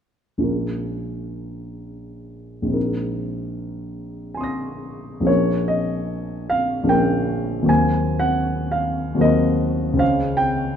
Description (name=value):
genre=classical, impressionist solo piano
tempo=60-82 BPM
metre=3/4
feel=rubato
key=Bb minor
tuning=A4 = 441 Hz
part: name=warm concert grand piano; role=solo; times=0.4-10.8 s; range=Bb1 to Bb6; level=-20 LUFS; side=equal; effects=none
room=wet recital hall reverb, RT60 1.6 s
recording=dark, warm production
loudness=-19 LUFS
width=side -8 dB against mid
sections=0.5-5.3 A section; 5.3-10.8 B section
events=none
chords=0.5 Bbm7; 2.8 Abadd9/Bb; 5.3 Bbm6; 7.7 Ebm6; 10.0 Db5